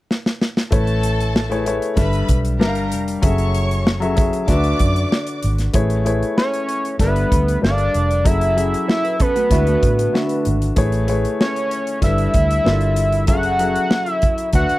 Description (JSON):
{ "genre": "lush 1970s-style soul", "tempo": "96 BPM", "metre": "4/4", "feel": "straight", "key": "A major", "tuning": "A4 = 438 Hz", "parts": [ { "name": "modern studio drum kit", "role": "drums", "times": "0.1-14.8 s", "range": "hi-hat, kick drum, snare drum", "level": "-19 LUFS", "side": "equal", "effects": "none" }, { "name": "warm studio violin section", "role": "second line", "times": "0.7-5.4 s", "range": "A4 to D6", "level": "-27 LUFS", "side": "equal", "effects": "none" }, { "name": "warm grand piano", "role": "accompaniment", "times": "0.7-14.8 s", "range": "D3 to F5", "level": "-22 LUFS", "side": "left 2 dB", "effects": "none" }, { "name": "vintage muted fingered electric bass", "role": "bass", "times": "0.7-14.7 s", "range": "F1 to A2", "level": "-20 LUFS", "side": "equal", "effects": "none" }, { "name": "fat analog lead", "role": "melody", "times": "6.4-14.8 s", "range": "B4 to F#5", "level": "-20 LUFS", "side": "equal", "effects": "none" }, { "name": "mellow electric guitar", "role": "riff", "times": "8.9-10.6 s", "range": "G#3 to C#5", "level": "-25 LUFS", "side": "right 6 dB", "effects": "none" } ], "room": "studio reverb", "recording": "dry, close 1970s-style studio recording", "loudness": "-16 LUFS", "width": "side -17 dB against mid", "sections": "0.7-5.7 A section; 5.7-14.8 B section", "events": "drum fill 0.1-0.7", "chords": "0.0 N.C.; 0.7 Amaj7; 2.0 G69; 2.6 Gm7; 3.2 F#m7; 4.5 D6; 5.7 Amaj7; 7.0 G69; 7.6 Gm7; 8.3 F#m7; 9.5 D6; 10.8 Amaj7; 12.0 G69; 12.7 Gm7; 13.3 F#m7" }